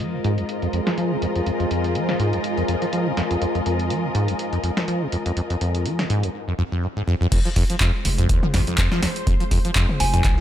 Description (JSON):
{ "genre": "acid house", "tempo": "123 BPM", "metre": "4/4", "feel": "swing 55% on 16ths", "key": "F minor", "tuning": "A4 = 439 Hz", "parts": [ { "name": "string machine, full ensemble", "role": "sustained chords", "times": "0.0-10.4 s", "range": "Ab3 to C5", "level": "-28 LUFS", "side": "equal", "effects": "ensemble chorus, sidechain pumping" }, { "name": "acid bass, saw", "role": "riff", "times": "0.0-10.4 s", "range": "Eb2 to F3", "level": "-23 LUFS", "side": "equal", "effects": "overdrive, wide subtle chorus" }, { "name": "punchy analog drum machine", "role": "drums", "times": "0.0-10.4 s", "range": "crash cymbal, handclaps, hi-hat, snare drum, toms", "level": "-27 LUFS", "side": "equal", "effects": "low-pass filter on hats, low-pass filter on snare, low-pass filter on cymbals, low-pass filter on toms" }, { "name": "muted studio string section", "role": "texture", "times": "0.0-6.3 s", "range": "F4 to Ab5", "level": "-28 LUFS", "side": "left 2 dB", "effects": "sidechain pumping" }, { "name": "saturated sub bass", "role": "bass", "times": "7.3-10.4 s", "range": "F1 to F2", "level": "-24 LUFS", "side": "equal", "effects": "sidechain pumping" }, { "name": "electronic kick drum", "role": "drums", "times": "7.3-10.4 s", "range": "none", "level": "-20 LUFS", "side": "equal", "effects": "none" }, { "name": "soft synth bell", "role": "melody", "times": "10.0-10.2 s", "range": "Ab5", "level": "-24 LUFS", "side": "right 1 dB", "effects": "chorus, phaser" } ], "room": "light reverb", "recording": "none", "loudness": "-19 LUFS", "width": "side -11 dB against mid", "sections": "0.0-7.3 A section; 7.3-10.4 B section", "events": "filter sweep on acid bass 0.0-7.3; drop 7.3-10.4", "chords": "0.0 Fm", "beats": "0.00 0.49 0.98 | 1.47 1.95 2.44 2.93 | 3.42 3.90 4.39 4.88 | 5.37 5.86 6.34 6.83 | 7.32 7.81 8.29 8.78 | 9.27 9.76 10.25" }